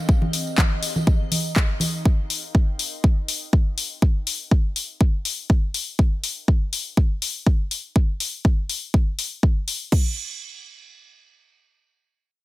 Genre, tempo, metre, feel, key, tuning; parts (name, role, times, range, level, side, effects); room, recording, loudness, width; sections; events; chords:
piano house; 122 BPM; 4/4; straight; A4 = 440 Hz
granular cloud pad; texture; 0.0-2.1 s; C4 to Eb5; -36 LUFS; equal; built-in reverb, sidechain pumping
house drum kit; drums; 0.1-10.0 s; crash cymbal, kick drum; -18 LUFS; equal; overdrive
tambourine and congas; percussion; 0.1-2.0 s; -27 LUFS; right 1 dB
house drum kit; drums; 0.3-9.8 s; handclaps, hi-hat; -25 LUFS; left 4 dB; overdrive
little or no reverb; -20 LUFS; side -18 dB against mid
0.0-9.9 A section; 9.9-12.4 B section
fade-out on ambient pad 0.0-2.1
0.1 Abadd9; 0.8 Ebadd9; 2.1 N.C.